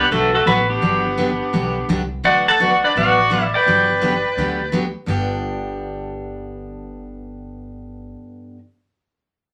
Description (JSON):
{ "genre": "country", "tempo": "170 BPM", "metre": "4/4", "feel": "swing 64% on 8ths", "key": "G major", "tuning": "A4 = 442 Hz", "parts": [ { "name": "pedal steel guitar", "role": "melody", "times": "0.0-4.7 s", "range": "D4 to A5", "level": "-19 LUFS", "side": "equal", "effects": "none" }, { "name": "clear fiddle", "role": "second line", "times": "0.0-4.7 s", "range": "A3 to B4", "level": "-24 LUFS", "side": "equal", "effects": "none" }, { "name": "upright bass", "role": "bass", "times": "0.0-8.1 s", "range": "G1 to D2", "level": "-31 LUFS", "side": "equal", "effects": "none" }, { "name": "picked steel-string acoustic guitar", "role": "accompaniment", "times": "0.1-8.6 s", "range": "G2 to B4", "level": "-26 LUFS", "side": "equal", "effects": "none" } ], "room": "wet studio ambience, RT60 0.5 s", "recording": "none", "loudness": "-18 LUFS", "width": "mono", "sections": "0.0-2.2 A section; 2.2-5.1 B section; 5.1-7.9 C section", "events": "none", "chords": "0.0 D6; 0.8 Gmaj7; 2.2 D6; 3.7 Gmaj7; 5.1 G", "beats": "0.12 0.47 | 0.82 1.18 1.53 1.89 | 2.24 2.60 2.95 3.30 | 3.66 4.01 4.37 4.72 | 5.08 5.43 5.78 6.14 | 6.49 6.84 7.20 7.55" }